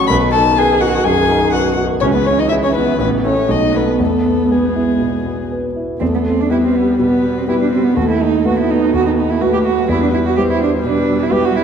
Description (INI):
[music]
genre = quick classical-period movement for piano quartet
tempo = 124 BPM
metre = 4/4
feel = rubato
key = E major, E minor from 6.0 s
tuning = A4 = 440 Hz
[part]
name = dark violin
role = melody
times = 0.0-11.6 s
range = G#4 to B5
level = -20 LUFS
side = left 6 dB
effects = none
[part]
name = dark viola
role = accompaniment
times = 0.0-11.6 s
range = D#3 to B3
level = -22 LUFS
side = right 4 dB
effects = none
[part]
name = warm concert grand piano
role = accompaniment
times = 0.0-11.6 s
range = A1 to C#5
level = -16 LUFS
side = left 2 dB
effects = none
[part]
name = dark cello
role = second line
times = 0.1-11.6 s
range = G#3 to B4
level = -18 LUFS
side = right 5 dB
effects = none
[sound]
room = wet concert hall reverb, RT60 1.9 s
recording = dark, warm production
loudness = -13 LUFS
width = side -7 dB against mid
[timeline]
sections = 0.0-6.0 A section; 6.0-11.6 B section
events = none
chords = 0.1 B; 2.0 C#m; 3.0 A; 3.5 B7; 4.0 E; 6.0 Em; 8.0 B7/D#; 9.9 Em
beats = | 0.10 0.58 1.05 1.53 | 2.02 2.50 2.99 3.48 | 3.99 4.50 5.01 5.51 | 6.01 6.50 6.99 7.48 | 7.96 8.45 8.94 9.42 | 9.89 10.37 10.84 11.32